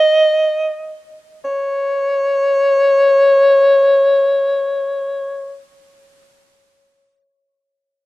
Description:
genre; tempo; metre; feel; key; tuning
jazz; free time; none; none; unclear; A4 = 440 Hz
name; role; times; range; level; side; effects
mellow soprano saxophone; solo; 0.0-5.7 s; Db5 to Eb5; -12 LUFS; left 1 dB; none
room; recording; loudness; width
small room ambience; dry, close 1970s-style studio recording; -12 LUFS; side -17 dB against mid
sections
0.0-1.4 A section; 1.4-5.0 B section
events
none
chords
none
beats
free time

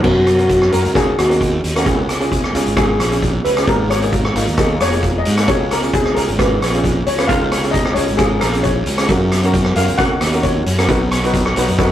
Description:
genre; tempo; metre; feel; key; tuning
calypso; 133 BPM; 4/4; straight; F# major; A4 = 440 Hz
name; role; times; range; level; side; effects
steel pan; melody; 0.0-10.9 s; F#4 to F#5; -19 LUFS; left 2 dB; none
steel pan; accompaniment; 0.0-11.9 s; A#3 to B4; -21 LUFS; right 1 dB; none
fuzz fingered electric bass; bass; 0.0-11.9 s; E#1 to G#2; -19 LUFS; equal; overdrive
street-band drum kit; drums; 0.0-11.9 s; crash cymbal, hi-hat, kick drum, rim click; -18 LUFS; equal; none
room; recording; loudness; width
moderate studio ambience, RT60 0.5 s; rough rehearsal-room recording, tube saturation; -13 LUFS; side -11 dB against mid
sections
0.1-11.9 A section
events
steel pan solo 0.1-11.9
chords
0.1 F#6; 1.9 C#; 3.7 G#sus2; 5.5 C#; 7.3 C#6; 9.1 F#; 10.9 B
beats
| 0.06 0.51 0.96 1.41 | 1.86 2.32 2.77 3.22 | 3.67 4.12 4.58 5.03 | 5.48 5.93 6.38 6.83 | 7.28 7.74 8.19 8.64 | 9.09 9.54 9.99 10.44 | 10.89 11.34 11.79

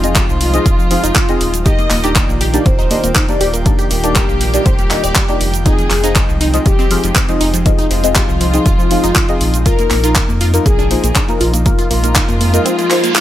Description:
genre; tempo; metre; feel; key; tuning
progressive house; 120 BPM; 4/4; straight; F dorian; A4 = 439 Hz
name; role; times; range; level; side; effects
soft octave-layered synth lead; melody; 0.0-13.2 s; F4 to Eb5; -22 LUFS; left 2 dB; chorus, phaser, sidechain pumping, dub echo
warm studio violin section; second line; 0.0-13.2 s; F4 to Eb5; -25 LUFS; equal; sidechain pumping, dub echo
airy breathy pad; sustained chords; 0.0-13.2 s; Eb3 to G5; -23 LUFS; equal; chorus, sidechain pumping
wide unison pluck; arpeggios; 0.0-13.2 s; F3 to D5; -22 LUFS; right 1 dB; sidechain pumping, dub echo
deep mellow chord stab; stabs; 0.0-13.0 s; Bb3 to F5; -20 LUFS; left 2 dB; chorus, phaser, sidechain pumping, dub echo
round analog bass; bass; 0.0-12.6 s; Eb1 to F2; -18 LUFS; equal; sidechain pumping
house drum kit; drums; 0.0-13.2 s; handclaps, hi-hat, shaker; -18 LUFS; equal; none
electronic kick drum; drums; 0.2-12.3 s; none; -15 LUFS; equal; none
reverse cymbal; sound effects; 12.8-13.2 s; none; -20 LUFS; right 3 dB; none
room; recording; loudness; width
digital ambience; none; -11 LUFS; side -13 dB against mid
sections
0.0-13.2 A section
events
reverse cymbal 12.8-13.2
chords
0.0 Fm7; 1.7 Ebmaj7; 5.7 Fm7; 9.7 Bbsus4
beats
0.16 0.66 1.16 | 1.66 2.16 2.66 3.16 | 3.66 4.16 4.66 5.16 | 5.66 6.16 6.66 7.16 | 7.66 8.16 8.66 9.16 | 9.66 10.16 10.66 11.16 | 11.66 12.16 12.66 13.16

